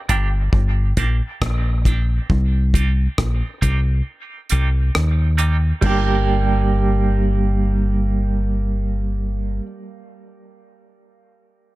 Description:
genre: dub reggae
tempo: 68 BPM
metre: 4/4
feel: swing 59% on 16ths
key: G minor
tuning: A4 = 440 Hz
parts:
  - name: clean electric guitar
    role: accompaniment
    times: 0.1-9.7 s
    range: G3 to G4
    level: -24 LUFS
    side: right 4 dB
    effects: tremolo, high-pass filter, dub echo
  - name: deep dub fingered electric bass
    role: bass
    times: 0.1-9.6 s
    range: G1 to Eb2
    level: -18 LUFS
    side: equal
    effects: none
  - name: deep reggae drum kit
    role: drums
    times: 0.1-6.1 s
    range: crash cymbal, hi-hat, kick drum, rim click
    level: -22 LUFS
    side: equal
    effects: none
room: small room ambience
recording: echo-heavy mix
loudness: -17 LUFS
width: side -18 dB against mid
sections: 0.0-5.8 A section; 5.8-9.3 B section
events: kick muted 4.1-5.8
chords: 0.0 Gm; 2.3 Cm; 5.8 Gm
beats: 0.53 1.41 | 2.30 3.18 4.06 4.94 | 5.82 6.70 7.58 8.47

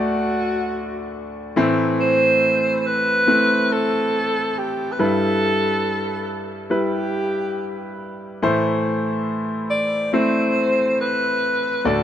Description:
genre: pop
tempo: 70 BPM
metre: 4/4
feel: straight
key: A dorian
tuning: A4 = 440 Hz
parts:
  - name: bright alto saxophone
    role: melody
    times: 0.0-12.0 s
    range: F#4 to D5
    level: -20 LUFS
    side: equal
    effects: none
  - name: clear concert grand piano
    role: accompaniment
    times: 0.0-12.0 s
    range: D2 to D5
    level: -21 LUFS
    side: left 1 dB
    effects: none
room: moderate lush hall reverb, RT60 3.2 s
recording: rough home demo mix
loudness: -18 LUFS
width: side -10 dB against mid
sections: 0.0-12.0 A section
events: none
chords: 0.0 D; 1.6 Am; 5.0 Em/G; 8.4 Am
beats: 0.71 | 1.56 2.42 3.28 4.13 | 4.99 5.85 6.71 7.56 | 8.42 9.28 10.13 10.99 | 11.85

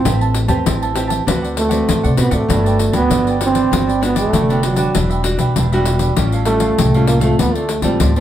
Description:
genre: samba and choro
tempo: 98 BPM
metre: 4/4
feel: straight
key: A minor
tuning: A4 = 440 Hz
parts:
  - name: breathy trombone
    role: melody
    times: 0.0-8.2 s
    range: F#3 to C4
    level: -18 LUFS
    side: right 2 dB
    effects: none
  - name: cavaquinho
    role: accompaniment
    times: 0.0-8.2 s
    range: D4 to A5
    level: -25 LUFS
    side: right 5 dB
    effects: none
  - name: nylon-string guitar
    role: accompaniment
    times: 0.0-8.2 s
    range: G2 to B4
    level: -21 LUFS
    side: left 1 dB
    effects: none
  - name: upright bass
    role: bass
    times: 0.0-8.2 s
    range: E1 to D3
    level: -18 LUFS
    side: equal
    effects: none
  - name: pandeiro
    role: percussion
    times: 0.1-8.2 s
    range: none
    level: -21 LUFS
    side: left 4 dB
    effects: none
room: wet studio ambience, RT60 0.4 s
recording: heard from further back in the room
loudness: -13 LUFS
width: side -11 dB against mid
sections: 0.0-8.2 A section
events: none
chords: 0.0 Am9; 1.3 D6; 2.5 Gmaj7; 4.9 Em9; 6.2 A7alt; 7.4 Dm7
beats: | 0.05 0.66 1.27 1.88 | 2.50 3.11 3.72 4.33 | 4.94 5.55 6.17 6.78 | 7.39 8.00

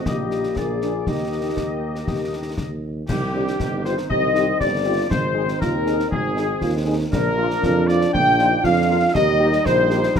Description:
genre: military-style march for wind band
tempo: 119 BPM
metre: 2/4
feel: straight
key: Eb major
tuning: A4 = 437 Hz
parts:
  - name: mellow cornet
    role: melody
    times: 0.0-10.2 s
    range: G4 to G5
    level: -26 LUFS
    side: equal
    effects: none
  - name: clear woodwind section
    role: second line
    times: 0.0-10.2 s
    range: G4 to G5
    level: -26 LUFS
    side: left 2 dB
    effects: none
  - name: warm euphonium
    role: second line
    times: 0.0-10.2 s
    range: Bb3 to G4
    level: -27 LUFS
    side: right 5 dB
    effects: none
  - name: warm French horn section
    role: accompaniment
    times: 0.0-10.0 s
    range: G3 to Ab4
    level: -27 LUFS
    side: left 6 dB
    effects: none
  - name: warm tuba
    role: bass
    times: 0.1-10.2 s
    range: G1 to F2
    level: -24 LUFS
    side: right 2 dB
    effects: none
  - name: concert snare drum, concert bass drum and clash cymbals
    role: drums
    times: 0.1-10.2 s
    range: none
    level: -27 LUFS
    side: left 2 dB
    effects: none
  - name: mellow hollow flute section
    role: second line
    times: 3.1-10.2 s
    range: G4 to G5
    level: -25 LUFS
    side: left 4 dB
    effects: none
  - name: warm trombone section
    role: sustained chords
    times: 3.1-10.2 s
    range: Eb3 to Eb4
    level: -28 LUFS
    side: right 1 dB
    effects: none
room: light reverb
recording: close, detailed microphones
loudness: -18 LUFS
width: side -7 dB against mid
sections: 0.0-3.1 A section; 3.1-10.2 B section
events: none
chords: 0.1 Eb/Bb; 0.6 Bb7; 1.1 Eb; 3.1 Cm; 5.1 Ab; 7.1 Bb; 9.2 Eb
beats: | 0.06 0.57 | 1.07 1.58 | 2.08 2.59 | 3.09 3.60 | 4.10 4.61 | 5.11 5.62 | 6.12 6.62 | 7.13 7.63 | 8.14 8.64 | 9.15 9.66 | 10.16

